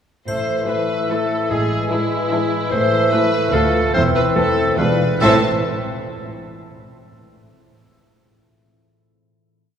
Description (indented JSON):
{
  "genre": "cinematic, playful, whimsical film cue",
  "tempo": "146 BPM",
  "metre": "3/4",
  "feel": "uneven beats",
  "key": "A minor",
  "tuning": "A4 = 442 Hz",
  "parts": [
    { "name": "rich studio violin section", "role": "melody", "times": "0.3-5.5 s", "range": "E4 to A5", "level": "-26 LUFS", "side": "left 2 dB", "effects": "none" },
    { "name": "bright clarinet", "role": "second line", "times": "0.3-5.4 s", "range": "E4 to C5", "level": "-23 LUFS", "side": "equal", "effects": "none" },
    { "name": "warm oboe", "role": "second line", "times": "0.3-5.4 s", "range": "E5 to F5", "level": "-26 LUFS", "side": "right 3 dB", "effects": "none" },
    { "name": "clear bassoon", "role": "accompaniment", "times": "0.3-5.4 s", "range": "G#3 to D4", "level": "-25 LUFS", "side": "equal", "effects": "none" },
    { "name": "warm French horn section", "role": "sustained chords", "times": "0.3-5.4 s", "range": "G#3 to F4", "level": "-25 LUFS", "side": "left 1 dB", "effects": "none" },
    { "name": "concert harp", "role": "arpeggios", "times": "0.3-5.5 s", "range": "A2 to E5", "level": "-26 LUFS", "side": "left 3 dB", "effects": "none" },
    { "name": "warm studio cello section", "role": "bass", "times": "0.3-5.5 s", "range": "D2 to A2", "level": "-26 LUFS", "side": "right 1 dB", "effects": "none" },
    { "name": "warm studio double bass section", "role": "bass", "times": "0.3-5.5 s", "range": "E1 to D2", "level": "-27 LUFS", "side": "right 2 dB", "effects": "none" },
    { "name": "triangle", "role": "percussion", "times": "0.3-1.1 s", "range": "none", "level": "-43 LUFS", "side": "left 1 dB", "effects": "none" },
    { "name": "rich studio violin section", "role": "second line", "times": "0.7-5.5 s", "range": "C4 to E5", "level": "-27 LUFS", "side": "equal", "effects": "none" },
    { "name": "warm studio viola section", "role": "accompaniment", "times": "0.7-5.5 s", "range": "E3 to E4", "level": "-27 LUFS", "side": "right 1 dB", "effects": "none" }
  ],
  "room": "wet church reverb, RT60 3.3 s",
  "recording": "recorded in a church or concert hall",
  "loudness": "-15 LUFS",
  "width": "side -8 dB against mid",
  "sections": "0.3-5.2 A section; 5.2-6.5 final chord",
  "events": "none",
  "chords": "0.3 Am; 1.5 E7/A; 2.7 Am; 3.5 Dm; 3.9 Am/E; 4.8 E7b9; 5.2 Am",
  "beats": "| 0.28 0.69 1.10 | 1.50 1.91 2.31 | 2.72 3.12 3.53 | 3.95 4.36 4.79 | 5.21"
}